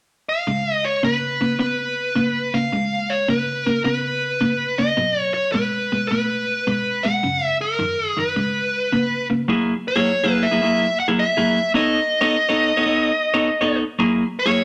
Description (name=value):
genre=blues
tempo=106 BPM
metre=4/4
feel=swing 67% on 8ths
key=F# mixolydian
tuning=A4 = 439 Hz
part: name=dark smooth lead guitar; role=melody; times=0.3-14.6 s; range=A#4 to F#5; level=-23 LUFS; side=equal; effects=overdrive
part: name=clean electric guitar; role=riff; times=0.5-14.6 s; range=F#2 to C#5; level=-23 LUFS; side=equal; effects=none
room=moderate large studio reverb, RT60 1.2 s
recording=none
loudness=-20 LUFS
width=mono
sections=0.5-9.5 A section; 9.5-14.6 B section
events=none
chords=0.5 C#7; 5.0 B5; 7.2 F#; 8.4 C#5; 9.5 F#9; 11.7 B9; 14.0 F#9